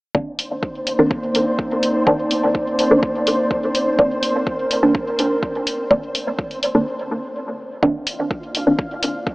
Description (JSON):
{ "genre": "dub techno", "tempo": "125 BPM", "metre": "4/4", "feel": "straight", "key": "C minor", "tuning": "A4 = 440 Hz", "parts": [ { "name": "dark analog pad", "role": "sustained chords", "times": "0.1-9.3 s", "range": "Bb3 to D5", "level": "-23 LUFS", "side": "equal", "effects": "chorus, sidechain pumping" }, { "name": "filtered dub chord stab", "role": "stabs", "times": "0.1-8.8 s", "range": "Eb3 to D4", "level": "-19 LUFS", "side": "equal", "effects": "phaser, sidechain pumping, dub echo" }, { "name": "electronic kick drum", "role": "drums", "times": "0.1-9.3 s", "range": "none", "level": "-24 LUFS", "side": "equal", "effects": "none" }, { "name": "flickering grainy texture", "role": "texture", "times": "0.5-9.3 s", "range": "C4 to F5", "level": "-26 LUFS", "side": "equal", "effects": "built-in reverb, sidechain pumping" }, { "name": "electronic hi-hat", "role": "drums", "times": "0.4-9.1 s", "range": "none", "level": "-23 LUFS", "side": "left 1 dB", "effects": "none" } ], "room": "moderate huge ambient reverb, RT60 5.9 s", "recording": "AM radio sound", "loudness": "-17 LUFS", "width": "side -22 dB against mid", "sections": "0.1-7.8 A section; 7.8-9.3 B section", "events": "filter sweep on synth stab 0.1-7.8; break 6.9-7.8", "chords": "0.1 Cm9", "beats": "| 0.15 0.63 1.11 1.59 | 2.07 2.55 3.03 3.51 | 3.99 4.47 4.95 5.43 | 5.91 6.39 6.87 7.35 | 7.83 8.31 8.79 9.27" }